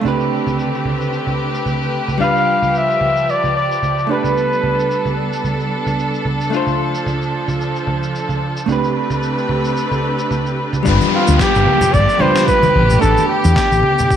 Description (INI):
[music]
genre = sunset chillout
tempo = 111 BPM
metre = 4/4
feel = swing 55% on 16ths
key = unclear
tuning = A4 = 440 Hz
[part]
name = hollow-body jazz guitar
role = accompaniment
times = 0.0-14.2 s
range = G3 to C5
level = -21 LUFS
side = moving between left 7 dB and right 7 dB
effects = auto-pan, digital delay
[part]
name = warm chamber string section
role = sustained chords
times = 0.0-14.2 s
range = D3 to B4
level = -22 LUFS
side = equal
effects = none
[part]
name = electronic congas, cabasa and snare drum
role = drums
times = 0.0-14.2 s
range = none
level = -22 LUFS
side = right 2 dB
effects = overdrive, low-pass filter on perc, low-pass filter on snare
[part]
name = warm flugelhorn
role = melody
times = 2.2-5.2, 11.1-14.2 s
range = F4 to F5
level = -16 LUFS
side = left 1 dB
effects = digital delay
[part]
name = woody fretless electric bass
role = bass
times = 10.9-13.8 s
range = G1 to E2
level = -14 LUFS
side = left 1 dB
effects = none
[part]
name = electronic kick drum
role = drums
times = 10.9-14.2 s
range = none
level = -20 LUFS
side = equal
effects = overdrive
[part]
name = downlifter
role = sound effects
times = 10.9-14.2 s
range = none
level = -22 LUFS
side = equal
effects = none
[part]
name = congas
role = percussion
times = 11.0-14.1 s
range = none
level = -22 LUFS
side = left 3 dB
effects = none
[sound]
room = moderate digital room reverb, RT60 1.1 s, studio reverb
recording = none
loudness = -14 LUFS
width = side -9 dB against mid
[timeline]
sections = 0.0-10.9 A section; 10.9-14.2 B section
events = none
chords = 0.0 Am11; 2.2 G7; 4.1 A9sus4; 6.5 F6; 8.7 Am11; 10.9 G7; 12.8 A9sus4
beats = | 0.05 0.59 1.13 1.67 | 2.21 2.75 3.29 3.83 | 4.37 4.91 5.46 6.00 | 6.54 7.08 7.62 8.16 | 8.70 9.24 9.78 10.32 | 10.86 11.40 11.94 12.48 | 13.02 13.56 14.10